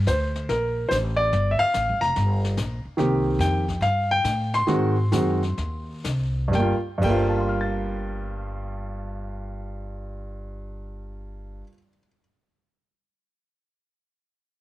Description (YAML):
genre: jazz piano trio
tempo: 122-144 BPM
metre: 4/4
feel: swing 67% on 8ths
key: G minor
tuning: A4 = 440 Hz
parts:
  - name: upright bass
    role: bass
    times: 0.0-11.6 s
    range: F1 to A2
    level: -26 LUFS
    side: equal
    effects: none
  - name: warm baby grand piano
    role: melody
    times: 0.1-12.2 s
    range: G2 to A6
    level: -24 LUFS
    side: equal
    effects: none
  - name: jazz brush drum kit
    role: drums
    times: 0.1-7.2 s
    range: brushed snare drum, crash cymbal, hi-hat, kick drum, snare drum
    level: -36 LUFS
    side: left 4 dB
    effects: none
room: small room ambience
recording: 1960s-style stereo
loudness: -21 LUFS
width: side -15 dB against mid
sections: 0.0-6.5 A section; 6.5-10.5 B section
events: slowing down 3.0-6.5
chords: 0.0 Bbmaj9; 1.3 Gm7; 3.0 Cm7; 4.7 Ab7; 6.5 Gm7